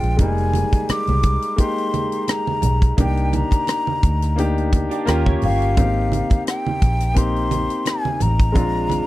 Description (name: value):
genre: lush 1970s-style soul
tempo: 86 BPM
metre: 4/4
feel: swing 54% on 16ths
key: F dorian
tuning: A4 = 440 Hz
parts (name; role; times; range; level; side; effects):
- breathy concert flute; melody; 0.0-9.1 s; F5 to D6; -24 LUFS; left 2 dB; none
- clear concert grand piano; accompaniment; 0.0-9.1 s; G3 to G4; -24 LUFS; left 2 dB; none
- vintage muted fingered electric bass; bass; 0.0-9.0 s; F1 to Eb2; -20 LUFS; equal; none
- tight funk drum kit; drums; 0.0-9.1 s; hi-hat, kick drum, rim click; -18 LUFS; equal; none
- congas; percussion; 0.2-9.1 s; none; -27 LUFS; right 5 dB; none
- electric guitar through a small old amp; riff; 4.9-5.7 s; D4 to Db5; -27 LUFS; right 6 dB; analog chorus
room: little or no reverb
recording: dry, close 1970s-style studio recording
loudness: -17 LUFS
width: side -16 dB against mid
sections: 0.0-9.1 A section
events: none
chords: 0.2 Fm11; 3.0 Cm9; 5.1 Eb7; 5.8 Abmaj7; 8.6 Bb7